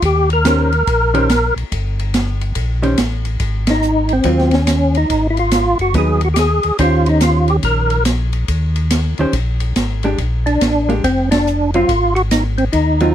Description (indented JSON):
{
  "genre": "soul jazz organ trio",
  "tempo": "142 BPM",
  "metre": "4/4",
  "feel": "swing 64% on 8ths",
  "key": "Eb mixolydian",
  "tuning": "A4 = 440 Hz",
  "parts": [
    { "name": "percussive tonewheel organ", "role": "melody", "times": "0.0-13.1 s", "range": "Bb3 to Bb4", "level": "-16 LUFS", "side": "equal", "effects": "slow rotary speaker, overdrive, chorus vibrato" },
    { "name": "mellow tonewheel organ", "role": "bass", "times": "0.0-13.1 s", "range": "F1 to Eb2", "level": "-17 LUFS", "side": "equal", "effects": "chorus vibrato, slow rotary speaker" },
    { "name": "open jazz drum kit", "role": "drums", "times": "0.0-13.1 s", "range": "hi-hat, kick drum, ride cymbal, snare drum", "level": "-21 LUFS", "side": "equal", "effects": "none" },
    { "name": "vintage hollow-body jazz guitar", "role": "accompaniment", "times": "0.4-13.1 s", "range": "Eb3 to C5", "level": "-18 LUFS", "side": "right 2 dB", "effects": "none" }
  ],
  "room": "little or no reverb",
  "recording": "dry, close 1970s-style studio recording",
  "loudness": "-13 LUFS",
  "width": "side -10 dB against mid",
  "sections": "0.0-13.1 A section",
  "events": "band accent 3.6, 11.2",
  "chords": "0.0 Eb6; 3.4 Ab6; 5.1 Abm7; 6.8 Eb6; 10.2 Bbadd9; 11.9 Ab5",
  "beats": "| 0.03 0.45 0.87 1.30 | 1.72 2.14 2.56 2.99 | 3.41 3.83 4.25 4.68 | 5.10 5.52 5.95 6.37 | 6.79 7.22 7.64 8.06 | 8.49 8.91 9.34 9.76 | 10.19 10.61 11.03 11.46 | 11.88 12.31 12.73"
}